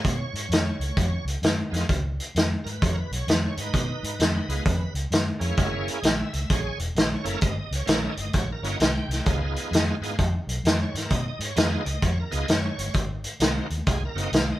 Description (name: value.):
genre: electric blues shuffle.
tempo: 130 BPM.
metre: 4/4.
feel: swing 65% on 8ths.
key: Db mixolydian.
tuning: A4 = 440 Hz.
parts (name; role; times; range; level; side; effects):
bright tonewheel organ; accompaniment; 0.0-14.6 s; Bb3 to G5; -33 LUFS; right 3 dB; slow rotary speaker, overdrive, chorus vibrato.
vintage muted fingered electric bass; bass; 0.0-14.5 s; Fb1 to Cb3; -28 LUFS; equal; none.
vintage drum kit; drums; 0.0-14.5 s; hi-hat, kick drum, snare drum; -24 LUFS; equal; none.
room: light reverb.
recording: band playing live in one room.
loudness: -22 LUFS.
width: side -15 dB against mid.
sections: 0.0-14.6 A section.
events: none.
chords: 0.0 Db9; 5.6 Gb9; 7.4 Gdim7; 9.3 Db9; 12.9 Ab9.